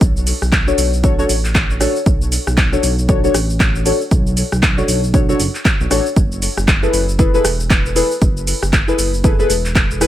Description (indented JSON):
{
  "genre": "deep house",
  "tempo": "117 BPM",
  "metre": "4/4",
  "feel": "swing 60% on 16ths",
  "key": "unclear",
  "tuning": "A4 = 440 Hz",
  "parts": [
    { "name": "smooth synth bass", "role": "bass", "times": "0.0-10.1 s", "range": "E1 to B1", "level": "-19 LUFS", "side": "equal", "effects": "sidechain pumping" },
    { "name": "electronic kick drum", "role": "drums", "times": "0.0-9.9 s", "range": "none", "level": "-15 LUFS", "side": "equal", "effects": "none" },
    { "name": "house drum kit", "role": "drums", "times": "0.0-10.1 s", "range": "cabasa, handclaps, hi-hat, rim click", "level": "-20 LUFS", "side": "equal", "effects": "none" },
    { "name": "deep mellow chord stab", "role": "stabs", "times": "0.7-10.1 s", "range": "D4 to C#5", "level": "-19 LUFS", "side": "left 2 dB", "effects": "chorus, sidechain pumping, dub echo" }
  ],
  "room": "little or no reverb",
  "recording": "none",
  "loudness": "-13 LUFS",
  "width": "side -13 dB against mid",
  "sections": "0.0-10.1 A section",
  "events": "none",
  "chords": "0.0 Bm9; 6.2 F#m11"
}